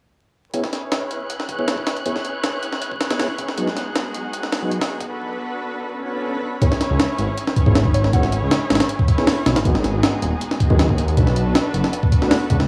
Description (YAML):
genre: drum and bass, jungle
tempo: 158 BPM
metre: 4/4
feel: straight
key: C# minor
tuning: A4 = 438 Hz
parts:
  - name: rich studio string section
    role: sustained chords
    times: 0.5-12.7 s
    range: G#3 to C#5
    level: -29 LUFS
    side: equal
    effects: low-pass filter
  - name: tonewheel organ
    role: stabs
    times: 0.5-12.4 s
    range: F#3 to C#5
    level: -29 LUFS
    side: equal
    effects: chorus vibrato, slow rotary speaker, low-pass filter, dub echo
  - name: breakbeat sampler-style drum kit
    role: drums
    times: 0.5-12.7 s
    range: hi-hat, kick drum, snare drum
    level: -22 LUFS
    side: equal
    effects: high-pass filter on hats, high-pass filter on kick, high-pass filter on snare, high-pass filter on room
  - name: wind-like tuned noise texture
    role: texture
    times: 1.0-5.1 s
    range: F#6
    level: -36 LUFS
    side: equal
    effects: built-in reverb
  - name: swell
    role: sound effects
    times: 5.9-6.6 s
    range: none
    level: -33 LUFS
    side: equal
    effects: none
  - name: detuned saw bass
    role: bass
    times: 6.9-12.7 s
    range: D#1 to D#2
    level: -22 LUFS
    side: equal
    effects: tube saturation
  - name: mallet-like synth pluck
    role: melody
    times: 7.9-8.4 s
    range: C#5 to F#5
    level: -31 LUFS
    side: equal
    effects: chorus, phaser, dub echo
room: light reverb, digital ambience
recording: dry, gritty hardware recording, vinyl crackle, small room reverb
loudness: -20 LUFS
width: mono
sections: 0.5-6.6 A section; 6.6-12.7 B section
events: filter sweep on string section 0.5-6.6; break 5.1-6.6; swell 5.9-6.6; drop 6.6-12.7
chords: 0.5 C#m7; 3.6 G#m7; 5.1 Bm7; 6.6 C#m7; 9.7 G#m7; 11.2 Bm7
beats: | 0.54 0.92 1.30 1.68 | 2.06 2.44 2.82 3.20 | 3.58 3.96 4.34 4.72 | 5.09 5.47 5.86 6.24 | 6.61 6.99 7.37 7.75 | 8.13 8.51 8.89 9.27 | 9.65 10.03 10.41 10.79 | 11.17 11.55 11.93 12.31